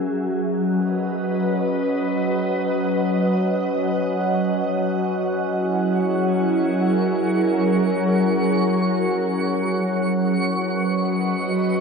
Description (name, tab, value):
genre	ambient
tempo	free time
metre	none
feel	none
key	unclear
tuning	A4 = 442 Hz
part	glassy FM pad	sustained chords	0.0-11.8 s	F#3 to F#5	-20 LUFS	equal	ensemble chorus, built-in reverb
part	analog drone	drone	0.0-11.8 s	F#3 to C#4	-25 LUFS	left 1 dB	chorus
part	twinkling granular texture	texture	6.0-11.8 s	C#6	-30 LUFS	right 2 dB	built-in reverb
room	wet huge ambient reverb, RT60 8.9 s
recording	worn, warbling old tape, cassette tape, warbly pitch drift, nothing above 10.3 kHz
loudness	-19 LUFS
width	side -5 dB against mid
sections	0.0-11.8 A section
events	none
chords	0.1 B/F#; 5.2 F#7; 10.2 B/F#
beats	free time